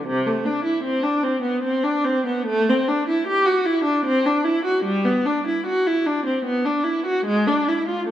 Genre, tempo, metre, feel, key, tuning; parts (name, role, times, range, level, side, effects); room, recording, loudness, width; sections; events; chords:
classical, baroque-style suite movement for unaccompanied viola; 76 BPM; 3/4; rubato; E minor; A4 = 441 Hz
rich viola; solo; 0.0-8.1 s; C3 to G4; -19 LUFS; equal
moderate concert hall reverb, RT60 2.0 s; -19 LUFS; side -11 dB against mid
0.0-8.1 A section